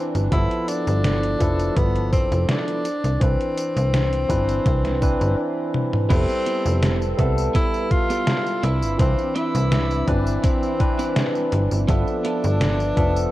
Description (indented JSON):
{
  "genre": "vaporwave",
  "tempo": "83 BPM",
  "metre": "4/4",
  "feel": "straight",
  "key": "C major",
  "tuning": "A4 = 442 Hz",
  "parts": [
    { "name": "clear tenor saxophone", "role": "melody", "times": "0.0-13.3 s", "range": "B3 to F4", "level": "-26 LUFS", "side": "left 1 dB", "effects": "tape echo" },
    { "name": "barky tine electric piano", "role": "accompaniment", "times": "0.0-13.3 s", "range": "E3 to E5", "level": "-25 LUFS", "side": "equal", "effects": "wide subtle chorus, tape echo" },
    { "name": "slap-like FM bass", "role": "bass", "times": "0.1-13.3 s", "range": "F1 to C2", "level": "-22 LUFS", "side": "equal", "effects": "none" },
    { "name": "detuned 8-bit digital drum machine", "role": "drums", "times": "0.1-13.3 s", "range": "crash cymbal, hi-hat, snare drum, tambourine, toms", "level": "-26 LUFS", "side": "equal", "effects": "gated reverb" },
    { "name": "electronic kick drum", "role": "drums", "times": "0.3-13.1 s", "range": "none", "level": "-22 LUFS", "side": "equal", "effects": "none" },
    { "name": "warbly tape-like pad", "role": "sustained chords", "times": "6.8-13.3 s", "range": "C4 to E6", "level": "-34 LUFS", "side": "equal", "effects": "none" },
    { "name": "clean electric guitar", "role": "riff", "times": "6.1-12.8 s", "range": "B3 to B4", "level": "-31 LUFS", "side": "right 4 dB", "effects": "analog chorus" }
  ],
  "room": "light reverb, digital ambience",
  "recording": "cassette tape",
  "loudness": "-18 LUFS",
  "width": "side -16 dB against mid",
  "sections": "0.0-6.1 A section; 6.1-13.3 B section",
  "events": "stop 5.4-6.1; drum fill 5.7-6.1",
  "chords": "0.3 G13; 2.9 Cmaj9; 6.1 Fmaj9#11; 8.6 Cmaj9; 11.9 G13"
}